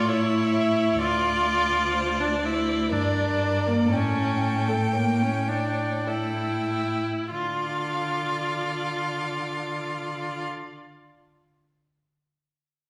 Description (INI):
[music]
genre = classical, slow romantic movement for string quartet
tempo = 46-67 BPM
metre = 3/4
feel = rubato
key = D minor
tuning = A4 = 442 Hz
[part]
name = clear violin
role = melody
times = 0.0-10.5 s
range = C#5 to G5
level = -34 LUFS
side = equal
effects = none
[part]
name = warm violin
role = second line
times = 0.0-10.5 s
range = A4 to E5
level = -36 LUFS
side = equal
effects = none
[part]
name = clear viola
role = accompaniment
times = 0.0-10.5 s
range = A3 to F4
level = -28 LUFS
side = equal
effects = none
[part]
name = rich cello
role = bass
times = 0.0-10.5 s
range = D2 to D3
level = -31 LUFS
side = equal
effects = none
[sound]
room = wet recital hall reverb, RT60 1.5 s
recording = recorded in a church or concert hall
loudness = -25 LUFS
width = mono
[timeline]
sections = 0.0-7.3 A section; 7.3-10.9 B section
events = slowing down 0.0-7.3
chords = 0.0 A; 1.0 Dm; 2.9 Gm; 3.9 A7; 7.3 Dm